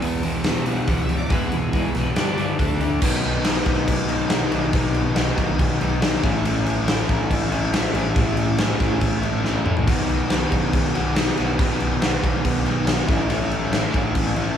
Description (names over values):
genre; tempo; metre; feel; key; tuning
classic rock; 140 BPM; 4/4; straight; B mixolydian; A4 = 440 Hz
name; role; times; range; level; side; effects
bright tonewheel organ; sustained chords; 0.0-14.6 s; D3 to F#5; -33 LUFS; equal; slow rotary speaker, overdrive
crunchy overdriven guitar; riff; 0.0-14.6 s; E2 to F#4; -23 LUFS; left 1 dB; none
growling picked electric bass; bass; 0.0-14.6 s; A1 to A2; -26 LUFS; equal; overdrive
huge arena drum kit; drums; 0.0-14.5 s; crash cymbal, hi-hat, kick drum, snare drum, toms; -22 LUFS; equal; none
room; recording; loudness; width
light reverb; band playing live in one room, small room ambience; -18 LUFS; side -9 dB against mid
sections
0.0-3.0 A section; 3.0-14.6 B section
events
half time 0.0-3.0; drum fill 9.4-9.9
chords
0.0 E; 2.2 G5; 2.6 D5; 3.0 B6; 6.2 A; 9.9 B6; 13.1 A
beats
0.02 0.45 0.88 | 1.31 1.74 2.17 2.60 | 3.02 3.45 3.88 4.31 | 4.74 5.16 5.59 6.02 | 6.45 6.88 7.30 7.73 | 8.16 8.59 9.02 9.45 | 9.88 10.30 10.73 11.16 | 11.59 12.02 12.45 12.87 | 13.30 13.73 14.15